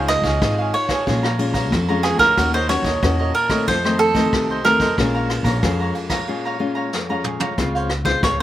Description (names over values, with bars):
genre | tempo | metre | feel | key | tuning
samba and choro | 92 BPM | 4/4 | straight | Bb minor | A4 = 441 Hz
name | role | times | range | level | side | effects
cavaquinho | melody | 0.0-8.4 s | Ab4 to Eb5 | -19 LUFS | right 2 dB | none
cavaquinho | accompaniment | 0.0-8.4 s | Eb4 to Bb5 | -26 LUFS | right 3 dB | slapback echo
nylon-string guitar | accompaniment | 0.0-8.4 s | F2 to Gb4 | -24 LUFS | left 3 dB | slapback echo
upright bass | bass | 0.0-8.4 s | Ab1 to F2 | -23 LUFS | equal | none
vintage brush drum kit | drums | 0.1-8.4 s | hi-hat, kick drum, ride cymbal, rim click, snare drum, toms | -24 LUFS | equal | none
room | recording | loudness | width
little or no reverb | none | -17 LUFS | side -13 dB against mid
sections
0.0-7.6 A section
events
break 6.3-7.6; drum fill 6.9-7.6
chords
0.0 Dbadd9; 1.1 Bbm7; 2.4 Ebm7; 3.7 F7; 5.0 Bbm7; 7.6 Dbmaj7